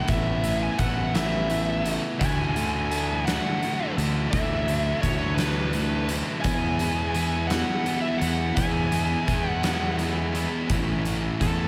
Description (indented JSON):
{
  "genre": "quiet-loud alternative rock",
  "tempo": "57 BPM (dotted quarters)",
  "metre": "6/8",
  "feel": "straight",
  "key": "unclear",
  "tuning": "A4 = 440 Hz",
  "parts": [
    { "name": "high-gain lead guitar", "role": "melody", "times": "0.0-11.7 s", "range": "A4 to G#5", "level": "-32 LUFS", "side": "equal", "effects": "distortion, slapback echo" },
    { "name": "electric guitar through a small old amp", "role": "arpeggios", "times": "0.0-2.2 s", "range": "A2 to E4", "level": "-37 LUFS", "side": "equal", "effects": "phaser, slapback echo, tape echo" },
    { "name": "thick fuzz guitar", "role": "riff", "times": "0.0-11.7 s", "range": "A2 to A4", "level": "-32 LUFS", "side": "equal", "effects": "distortion, slapback echo" },
    { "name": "fuzz fingered electric bass", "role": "bass", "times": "0.0-11.7 s", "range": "A1 to E2", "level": "-30 LUFS", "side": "equal", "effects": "overdrive" },
    { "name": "oversized low-tuned drum kit", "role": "drums", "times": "0.1-11.6 s", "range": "hi-hat, kick drum, snare drum", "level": "-32 LUFS", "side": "equal", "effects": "none" },
    { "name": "thick fuzz guitar", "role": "riff", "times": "2.2-11.7 s", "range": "A2 to E4", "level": "-34 LUFS", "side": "equal", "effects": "distortion, slapback echo" }
  ],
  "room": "moderate concert hall reverb, RT60 2.3 s",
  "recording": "big arena sound",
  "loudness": "-25 LUFS",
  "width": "mono",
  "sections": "0.0-10.7 A section",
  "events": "none",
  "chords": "0.1 Asus2; 2.2 Dsus2; 6.4 E; 10.7 A"
}